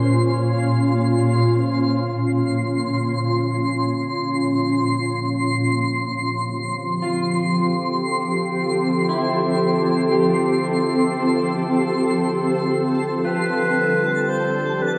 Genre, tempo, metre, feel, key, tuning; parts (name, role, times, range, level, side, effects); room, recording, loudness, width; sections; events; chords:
ambient; free time; A4 = 439 Hz
shimmering ambient pad; sustained chords; 0.0-15.0 s; Bb2 to A4; -22 LUFS; equal; chorus, built-in reverb
electric guitar at the edge of break-up; arpeggios; 0.0-15.0 s; E4 to C5; -32 LUFS; equal; lush chorus, diffuse ambient delay
analog drone; drone; 2.5-15.0 s; D3 to F3; -35 LUFS; equal; chorus
twinkling granular texture; texture; 0.0-15.0 s; A5 to C6; -29 LUFS; equal; built-in reverb
mellow clarinet; melody; 13.2-15.0 s; B4 to C5; -24 LUFS; equal
wet concert hall reverb, RT60 2.2 s; dark, warm production; -21 LUFS; mono
0.0-15.0 A section
fade-in on synth drone 0.0-15.0; filter sweep on ambient pad 0.0-15.0
0.0 Bbm; 5.0 Fadd9; 13.2 Gadd9